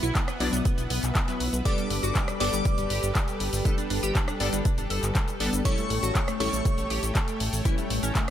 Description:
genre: progressive house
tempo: 120 BPM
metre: 4/4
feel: straight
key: unclear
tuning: A4 = 440 Hz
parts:
  - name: supersaw pad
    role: sustained chords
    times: 0.0-8.3 s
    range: G3 to G5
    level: -34 LUFS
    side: equal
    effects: sidechain pumping
  - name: glassy wavetable pluck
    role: arpeggios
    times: 0.0-8.3 s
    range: G3 to A4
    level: -34 LUFS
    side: left 1 dB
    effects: chorus, phaser, sidechain pumping, tape echo
  - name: wide unison pluck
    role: stabs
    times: 0.0-8.3 s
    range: F#3 to D5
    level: -33 LUFS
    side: left 2 dB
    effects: phaser, sidechain pumping, tape echo
  - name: plucky analog bass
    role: bass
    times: 0.0-8.1 s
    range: G1 to B1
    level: -30 LUFS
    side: equal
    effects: sidechain pumping
  - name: deep house drum kit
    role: drums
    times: 0.0-8.3 s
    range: handclaps, hi-hat, rim click, shaker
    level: -32 LUFS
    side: left 1 dB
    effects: sidechain pumping on hats, sidechain pumping on cymbals, sidechain pumping on perc
  - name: electronic kick drum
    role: drums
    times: 0.2-8.3 s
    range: none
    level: -26 LUFS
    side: equal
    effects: none
  - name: glassy synth bell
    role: melody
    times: 1.7-7.1 s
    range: C#5 to D6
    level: -34 LUFS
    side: left 1 dB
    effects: chorus, phaser, sidechain pumping, tape echo
  - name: airy dreamy lead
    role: second line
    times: 1.7-7.1 s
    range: C#6 to D6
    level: -40 LUFS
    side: equal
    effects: chorus, sidechain pumping, tape echo
room: little or no reverb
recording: none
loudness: -24 LUFS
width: side -11 dB against mid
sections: 0.0-8.3 A section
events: none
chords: 0.0 Bsus4; 1.7 Gadd9; 5.7 A7

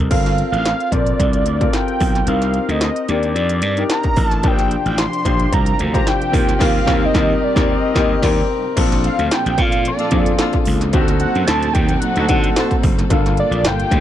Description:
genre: polished 1980s jazz-funk pop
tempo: 111 BPM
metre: 4/4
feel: swing 54% on 16ths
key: Bb major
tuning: A4 = 439 Hz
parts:
  - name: clear grand piano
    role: accompaniment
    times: 0.0-14.0 s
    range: Bb3 to C5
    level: -21 LUFS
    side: left 4 dB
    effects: lush chorus
  - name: gritty slap bass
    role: bass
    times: 0.0-14.0 s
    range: F#1 to D3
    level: -20 LUFS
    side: equal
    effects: overdrive
  - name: fat analog lead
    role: melody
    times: 0.1-14.0 s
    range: D5 to C6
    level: -21 LUFS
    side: right 1 dB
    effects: phaser
  - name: industrial drum kit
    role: drums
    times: 0.1-14.0 s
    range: crash cymbal, hi-hat, kick drum, snare drum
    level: -19 LUFS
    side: equal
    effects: distortion
  - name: warm studio string section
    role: sustained chords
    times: 4.4-14.0 s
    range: Bb2 to A4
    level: -26 LUFS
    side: right 3 dB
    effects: none
  - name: mellow horn section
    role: second line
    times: 10.0-12.7 s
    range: D4 to C5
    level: -26 LUFS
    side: right 2 dB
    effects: tape echo
room: little or no reverb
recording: dry, close 1970s-style studio recording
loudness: -14 LUFS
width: side -11 dB against mid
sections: 0.1-8.8 A section; 8.8-14.0 B section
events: band accent 6.6-8.8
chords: 0.1 Gm11; 2.3 Cm9; 4.4 Bb69; 6.3 Eb6; 8.8 Bbmaj7; 10.9 D7b9; 13.1 Gm9

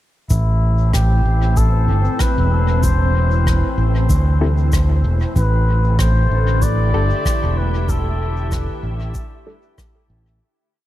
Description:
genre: ambient dub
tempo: 95 BPM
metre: 4/4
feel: swing 58% on 16ths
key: A minor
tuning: A4 = 440 Hz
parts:
  - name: trumpet with cup mute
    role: melody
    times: 0.3-8.8 s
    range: E4 to D5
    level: -24 LUFS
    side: left 2 dB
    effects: dub echo
  - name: soft additive organ-like pad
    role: sustained chords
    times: 0.3-10.4 s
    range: A2 to G4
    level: -26 LUFS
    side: equal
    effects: ensemble chorus, built-in reverb
  - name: overdriven fingered electric bass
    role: bass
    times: 0.3-10.4 s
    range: E1 to D2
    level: -16 LUFS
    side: equal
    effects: none
  - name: electronic kick drum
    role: drums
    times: 0.3-9.9 s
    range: none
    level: -21 LUFS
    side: equal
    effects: none
  - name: shaker and rim click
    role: drums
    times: 0.3-9.9 s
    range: none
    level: -31 LUFS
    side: left 1 dB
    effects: dub echo
  - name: filtered dub chord stab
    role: stabs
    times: 4.4-9.6 s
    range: G3 to A4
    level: -28 LUFS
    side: left 4 dB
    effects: phaser, dub echo
room: studio ambience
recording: echo-heavy mix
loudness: -14 LUFS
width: side -14 dB against mid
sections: 0.3-10.4 groove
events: fade-out 7.0-10.4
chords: 0.3 Am7

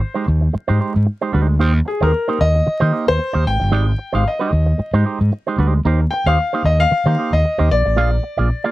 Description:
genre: disco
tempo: 113 BPM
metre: 4/4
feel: swing 56% on 16ths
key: Eb major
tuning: A4 = 440 Hz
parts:
  - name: warm baby grand piano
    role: melody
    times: 0.0-8.7 s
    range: Ab4 to G5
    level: -20 LUFS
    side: left 2 dB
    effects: none
  - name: electric guitar with an envelope filter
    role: accompaniment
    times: 0.0-8.7 s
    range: Ab3 to F5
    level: -21 LUFS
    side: right 5 dB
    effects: none
  - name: overdriven fingered electric bass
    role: bass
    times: 0.3-8.5 s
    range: G1 to Eb3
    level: -16 LUFS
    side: equal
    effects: none
room: little or no reverb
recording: dark, warm production, vinyl crackle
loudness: -15 LUFS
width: side -17 dB against mid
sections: 0.0-8.7 A section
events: none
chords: 0.0 Abmaj7; 1.6 Eb6; 3.5 Abmaj7; 5.8 Eb6; 7.7 Bb7

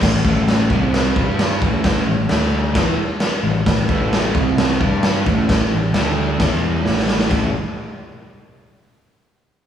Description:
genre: garage rock duo or trio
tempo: 132 BPM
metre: 4/4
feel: straight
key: unclear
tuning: A4 = 440 Hz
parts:
  - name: fuzz guitar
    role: riff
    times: 0.0-7.5 s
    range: A2 to G4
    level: -19 LUFS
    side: equal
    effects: distortion
  - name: growling picked electric bass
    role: bass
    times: 0.0-7.5 s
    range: A1 to G2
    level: -24 LUFS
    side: equal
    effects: overdrive
  - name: raw garage drum kit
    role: drums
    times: 0.0-7.4 s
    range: crash cymbal, kick drum, snare drum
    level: -18 LUFS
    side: equal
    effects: none
room: moderate large studio reverb, RT60 1.1 s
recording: band playing live in one room, studio reverb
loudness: -15 LUFS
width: side -9 dB against mid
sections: 0.0-7.3 A section; 7.3-9.1 B section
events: drum fill 6.9-7.3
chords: 0.0 A5; 0.7 C5; 1.2 G5; 1.6 A5; 2.3 D5; 2.8 A5; 4.3 C5; 4.8 G5; 5.3 A5; 5.9 D5; 6.4 E5; 6.9 A5

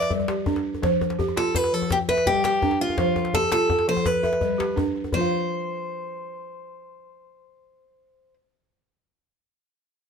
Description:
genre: west african traditional, West African string and xylophone music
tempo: 112 BPM (dotted quarters)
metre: 12/8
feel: straight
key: unclear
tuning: A4 = 440 Hz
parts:
  - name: picked steel-string acoustic guitar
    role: melody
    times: 0.0-8.3 s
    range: F4 to D5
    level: -24 LUFS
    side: equal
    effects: plate reverb
  - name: balafon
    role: arpeggios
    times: 0.0-8.4 s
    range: F3 to F5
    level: -25 LUFS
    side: right 1 dB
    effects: none
  - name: djembe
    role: percussion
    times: 0.0-5.3 s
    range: none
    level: -29 LUFS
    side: left 4 dB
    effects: none
room: moderate small room reverb, RT60 0.5 s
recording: none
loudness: -21 LUFS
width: side -6 dB against mid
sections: 0.0-5.1 A section; 5.1-9.4 B section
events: none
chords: 0.0 G5; 0.8 F5; 1.9 G5; 3.0 F; 4.1 G; 5.1 N.C.

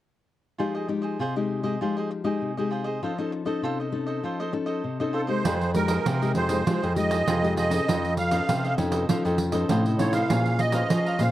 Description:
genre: samba and choro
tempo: 99 BPM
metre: 4/4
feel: straight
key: F minor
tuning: A4 = 441 Hz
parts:
  - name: cavaquinho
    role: accompaniment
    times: 0.6-11.3 s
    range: F4 to Bb5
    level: -32 LUFS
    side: right 3 dB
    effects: none
  - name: nylon-string guitar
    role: accompaniment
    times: 0.6-11.3 s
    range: C3 to C5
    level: -28 LUFS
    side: left 4 dB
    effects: none
  - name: musette accordion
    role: melody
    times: 5.1-11.3 s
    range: A4 to F5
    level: -27 LUFS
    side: right 3 dB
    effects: none
  - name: nylon-string guitar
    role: bass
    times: 5.5-11.3 s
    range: F2 to F3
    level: -25 LUFS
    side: equal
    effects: none
  - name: pandeiro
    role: percussion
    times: 5.5-11.3 s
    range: none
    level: -28 LUFS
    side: right 4 dB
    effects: none
room: light reverb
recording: dark, warm production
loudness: -23 LUFS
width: side -14 dB against mid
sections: 0.6-5.5 A section; 5.5-11.3 B section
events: none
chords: 0.6 Fm9; 3.0 F7b13; 5.5 Fm9; 7.9 F7b13; 10.3 Bbm9

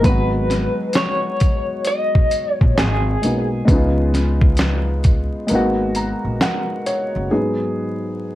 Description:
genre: lo-fi hip hop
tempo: 66 BPM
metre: 4/4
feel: swing 62% on 16ths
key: G# dorian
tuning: A4 = 441 Hz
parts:
  - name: dark upright piano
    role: accompaniment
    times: 0.0-8.3 s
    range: G#2 to A#5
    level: -21 LUFS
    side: equal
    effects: none
  - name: upright bass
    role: bass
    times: 0.0-7.3 s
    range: F#1 to C#2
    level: -21 LUFS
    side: equal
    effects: none
  - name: dusty soul sampler-style drum kit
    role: drums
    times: 0.0-7.1 s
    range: hi-hat, kick drum, snare drum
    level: -18 LUFS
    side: equal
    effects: none
  - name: electric guitar through a small old amp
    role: melody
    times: 0.1-3.5 s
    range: G#4 to D#5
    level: -22 LUFS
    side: left 1 dB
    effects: tremolo, tape echo
room: light reverb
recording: vinyl crackle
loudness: -16 LUFS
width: side -15 dB against mid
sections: 0.0-7.3 A section; 7.3-8.3 B section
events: break 5.5-7.3; upright piano fill 5.5-7.3; upright piano solo 7.3-8.3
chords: 0.0 G#m7; 3.7 C#7; 5.5 G#m9; 7.3 G#m7

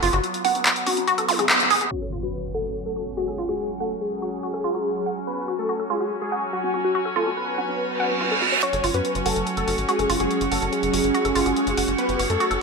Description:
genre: psychedelic trance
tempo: 143 BPM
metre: 4/4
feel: straight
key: F# minor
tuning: A4 = 441 Hz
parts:
  - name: vowel-sweep wobble bass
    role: second line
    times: 0.0-1.8, 6.6-8.5 s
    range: B3 to C#4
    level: -38 LUFS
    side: right 2 dB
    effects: none
  - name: overtone-sweeping drone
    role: sustained chords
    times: 0.0-12.6 s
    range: F#3 to F#4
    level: -29 LUFS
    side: right 3 dB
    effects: chorus, built-in reverb, phaser
  - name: woody wave-folded pluck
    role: riff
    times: 0.0-12.6 s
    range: E#4 to F#5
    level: -26 LUFS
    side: moving between left 4 dB and right 7 dB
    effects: chorus, auto-pan, tape echo
  - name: tight sequencer bass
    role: bass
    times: 0.0-0.2, 8.7-12.6 s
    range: F#1 to F#2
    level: -28 LUFS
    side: left 1 dB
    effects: none
  - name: techno drum kit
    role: drums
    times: 0.0-1.9, 8.6-12.6 s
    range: handclaps, hi-hat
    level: -24 LUFS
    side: left 1 dB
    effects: overdrive, studio reverb
  - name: zap, impact, reverse cymbal and riser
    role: sound effects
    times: 1.3-3.6, 7.9-12.6 s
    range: none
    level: -29 LUFS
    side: right 2 dB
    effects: none
  - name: wide unison lead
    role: melody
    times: 1.9-12.5 s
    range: F#4 to C#5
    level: -26 LUFS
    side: left 1 dB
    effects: phaser, tape echo
  - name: rich chamber string section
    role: texture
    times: 1.9-12.6 s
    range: C#4 to G#5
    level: -30 LUFS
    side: left 1 dB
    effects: none
room: moderate lush hall reverb, RT60 1.7 s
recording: low-pass filter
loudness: -21 LUFS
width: side -4 dB against mid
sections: 0.0-1.9 A section; 1.9-8.6 B section; 8.6-12.6 C section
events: band accent 1.5; impact 1.9-3.6; filter sweep 1.9-8.6; reverse cymbal 7.9-8.6; build-up 8.6-12.6; riser 8.6-12.6; filter sweep on synth arpeggio sound 8.6-12.6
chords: 0.0 F#5

